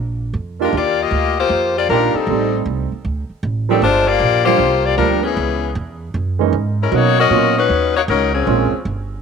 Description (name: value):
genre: jazz, big band swing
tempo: 155 BPM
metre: 4/4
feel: swing 65% on 8ths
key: unclear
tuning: A4 = 440 Hz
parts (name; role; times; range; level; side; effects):
- upright bass; bass; 0.0-9.2 s; G1 to B2; -21 LUFS; right 2 dB; none
- clear saxophone section; melody; 0.6-8.8 s; Fb3 to Eb5; -15 LUFS; left 6 dB; none
- warm grand piano; accompaniment; 0.6-8.7 s; Fb3 to G4; -19 LUFS; right 16 dB; none
room: moderate spring reverb, RT60 1.8 s, studio reverb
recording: 1960s-style stereo with parts hard left and right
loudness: -14 LUFS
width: side -6 dB against mid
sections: 0.7-9.2 A section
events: none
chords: 0.0 Bb; 2.3 Am7b5; 3.0 D5; 3.8 Gm7; 5.4 Dbm7; 6.1 Gb13; 6.9 Bmaj9; 8.5 Bbm9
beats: 0.34 | 0.72 1.11 1.50 1.89 | 2.27 2.66 3.04 3.43 | 3.82 4.21 4.59 4.98 | 5.37 5.75 6.14 6.53 | 6.92 7.30 7.69 8.08 | 8.46 8.85